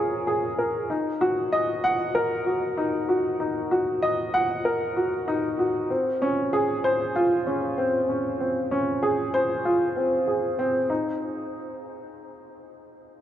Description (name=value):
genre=electronica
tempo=96 BPM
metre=4/4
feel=straight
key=unclear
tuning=A4 = 440 Hz
part: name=warm upright piano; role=solo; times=0.0-13.2 s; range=C4 to Gb5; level=-23 LUFS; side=equal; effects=none
room=moderate huge ambient reverb, RT60 8.0 s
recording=none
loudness=-22 LUFS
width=side -11 dB against mid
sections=0.0-10.9 A section; 10.9-13.2 B section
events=none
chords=none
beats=0.28 | 0.90 1.52 2.15 2.77 | 3.40 4.03 4.65 5.28 | 5.90 6.53 7.15 7.78 | 8.40 9.03 9.65 10.28 | 10.90 11.53 12.15 12.78